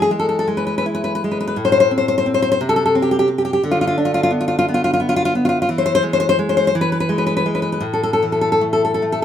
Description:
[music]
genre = romantic piece for solo classical guitar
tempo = 51-60 BPM (dotted quarters)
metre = 6/8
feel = rubato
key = A minor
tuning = A4 = 441 Hz
[part]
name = nylon-string guitar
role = solo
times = 0.0-9.2 s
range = A2 to C5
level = -15 LUFS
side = left 1 dB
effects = none
[sound]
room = moderate studio reverb, RT60 0.6 s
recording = band playing live in one room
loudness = -15 LUFS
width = side -9 dB against mid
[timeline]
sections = 0.0-9.2 A section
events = none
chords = 0.0 E; 1.6 Am; 2.6 N.C.; 3.6 Dm6; 5.7 E; 7.9 A5

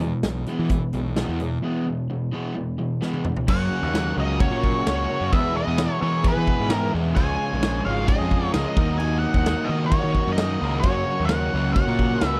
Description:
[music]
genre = classic rock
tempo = 130 BPM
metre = 4/4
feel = straight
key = F# mixolydian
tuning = A4 = 441 Hz
[part]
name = raw garage guitar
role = riff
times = 0.0-12.4 s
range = F#2 to F#4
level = -33 LUFS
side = equal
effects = overdrive
[part]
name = sludgy distorted guitar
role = riff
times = 0.0-12.4 s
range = E2 to G#4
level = -30 LUFS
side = equal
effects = overdrive
[part]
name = fuzz picked electric bass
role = bass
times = 0.0-12.4 s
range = G#1 to E3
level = -28 LUFS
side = equal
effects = overdrive
[part]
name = big rock drum kit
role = drums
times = 0.0-12.3 s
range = crash cymbal, hi-hat, kick drum, snare drum, toms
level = -27 LUFS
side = equal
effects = none
[part]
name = octave-fuzz lead guitar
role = melody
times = 3.5-12.4 s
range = B4 to G#5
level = -30 LUFS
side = equal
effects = wah, distortion
[part]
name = octave-fuzz lead guitar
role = second line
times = 3.5-12.4 s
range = F#4 to D#5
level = -38 LUFS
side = equal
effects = distortion
[part]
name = overdriven tonewheel organ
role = sustained chords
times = 3.5-12.4 s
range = G#3 to A#4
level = -39 LUFS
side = equal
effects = none
[sound]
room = small room ambience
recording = dry, close 1970s-style studio recording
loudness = -23 LUFS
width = mono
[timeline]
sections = 0.0-3.5 A section; 3.5-12.4 B section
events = drum fill 3.0-3.5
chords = 0.0 E; 3.5 F#; 5.3 E; 7.2 C#; 8.8 D#m

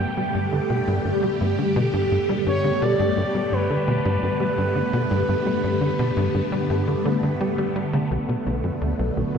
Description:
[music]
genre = ambient, sequencer-driven space music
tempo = 85 BPM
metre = 4/4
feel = straight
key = unclear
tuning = A4 = 441 Hz
[part]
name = expressive synth lead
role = melody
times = 0.0-7.4 s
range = B4 to G5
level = -28 LUFS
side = equal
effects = chorus, ping-pong delay
[part]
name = phased string machine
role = sustained chords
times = 0.0-9.4 s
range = D3 to G4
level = -24 LUFS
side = equal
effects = ensemble chorus, phaser
[part]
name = tight sequencer bass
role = riff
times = 0.0-9.4 s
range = B1 to G3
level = -24 LUFS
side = equal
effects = wide subtle chorus, ping-pong delay
[part]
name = soft round pluck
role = arpeggios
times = 8.1-9.2 s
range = none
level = barely audible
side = none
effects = none
[sound]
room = wet cathedral reverb, RT60 5.9 s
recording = in a vast, echoing space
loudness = -20 LUFS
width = side -7 dB against mid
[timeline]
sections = 0.0-8.1 A section; 8.1-9.4 B section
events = none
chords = 0.0 Gadd9; 8.1 Bm7

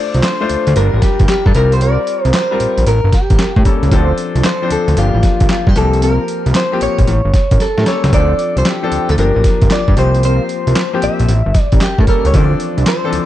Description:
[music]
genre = R&B, new jack swing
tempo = 114 BPM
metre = 4/4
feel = swing 66% on 16ths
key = D minor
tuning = A4 = 438 Hz
[part]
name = direct-recorded clean electric guitar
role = melody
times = 0.0-13.3 s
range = F4 to E5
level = -18 LUFS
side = equal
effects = lush chorus
[part]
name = clear concert grand piano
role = accompaniment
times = 0.0-13.3 s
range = E3 to C5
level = -20 LUFS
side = left 4 dB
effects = none
[part]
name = mellow synth brass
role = stabs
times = 0.1-12.9 s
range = C4 to C5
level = -24 LUFS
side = right 1 dB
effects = chorus
[part]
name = fat analog bass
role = bass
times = 0.1-13.2 s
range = G1 to A2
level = -14 LUFS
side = equal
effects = none
[part]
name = boom bap sampler-style drum kit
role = drums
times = 0.1-13.3 s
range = handclaps, hi-hat, kick drum, snare drum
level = -14 LUFS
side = equal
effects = overdrive
[sound]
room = digital ambience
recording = dark, warm production, nothing above 10.4 kHz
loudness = -11 LUFS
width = side -13 dB against mid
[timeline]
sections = 0.0-13.3 A section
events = drum fill 7.6-8.1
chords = 0.0 Dm7; 0.8 Gm7; 1.5 C7sus4; 2.9 A7b9; 3.9 Dm7; 5.0 Gm7; 5.8 C7sus4; 7.1 A7b9; 8.1 Dm7; 9.2 Gm7; 10.0 C7sus4; 11.3 A7b9; 12.3 Dm7

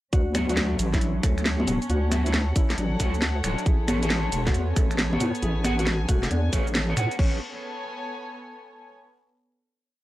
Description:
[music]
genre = UK garage, two-step garage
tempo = 136 BPM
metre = 4/4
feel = swing 66% on 16ths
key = A major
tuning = A4 = 440 Hz
[part]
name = nylon-string guitar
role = melody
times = 0.1-7.4 s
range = F#3 to G#4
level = -32 LUFS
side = left 1 dB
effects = analog delay
[part]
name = deep soft wobble bass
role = bass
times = 0.1-7.4 s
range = D1 to A2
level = -26 LUFS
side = equal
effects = chorus, sidechain pumping
[part]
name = electronic kick drum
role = drums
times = 0.1-7.3 s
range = none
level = -23 LUFS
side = equal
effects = none
[part]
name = garage drum kit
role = drums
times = 0.1-7.3 s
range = congas, crash cymbal, finger snaps, hi-hat, shaker, snare drum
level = -27 LUFS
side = equal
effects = none
[part]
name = dark studio string section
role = texture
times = 0.1-8.9 s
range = B3 to G#5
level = -36 LUFS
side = left 2 dB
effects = sidechain pumping
[part]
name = electric guitar at the edge of break-up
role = stabs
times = 0.3-7.4 s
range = F#3 to F#5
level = -32 LUFS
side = right 1 dB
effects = analog chorus
[sound]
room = light reverb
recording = dry, gritty hardware recording, transformer saturation, cassette tape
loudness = -22 LUFS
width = side -16 dB against mid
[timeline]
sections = 0.1-7.2 drop; 7.2-9.0 final chord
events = drop 0.1-7.2; band accent 6.7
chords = 0.1 Dmaj7; 3.7 Amaj9

